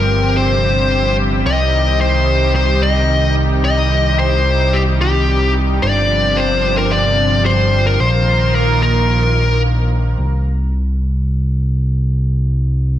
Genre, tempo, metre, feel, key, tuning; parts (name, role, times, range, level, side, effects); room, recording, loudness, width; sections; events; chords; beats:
synthwave; 110 BPM; 4/4; straight; C minor; A4 = 442 Hz
fuzz lead guitar; melody; 0.0-9.6 s; G4 to Eb5; -17 LUFS; left 2 dB; distortion, ping-pong delay
lush unison pad; sustained chords; 0.0-10.2 s; C3 to Bb4; -19 LUFS; right 1 dB; chorus
fat analog bass; bass; 0.0-13.0 s; G1 to C2; -16 LUFS; equal
wet recital hall reverb, RT60 1.5 s; big arena sound; -13 LUFS; side -12 dB against mid
0.0-10.2 A section; 10.2-13.0 B section
0.0 G7sus4; 1.5 Cm; 5.8 G7sus4; 8.0 Bbsus4; 10.2 N.C.
0.37 0.92 | 1.46 2.01 2.55 3.10 | 3.64 4.19 4.73 5.28 | 5.82 6.37 6.92 7.46 | 8.01 8.55 9.10 9.64 | 10.19 10.73 11.28 11.82 | 12.37 12.91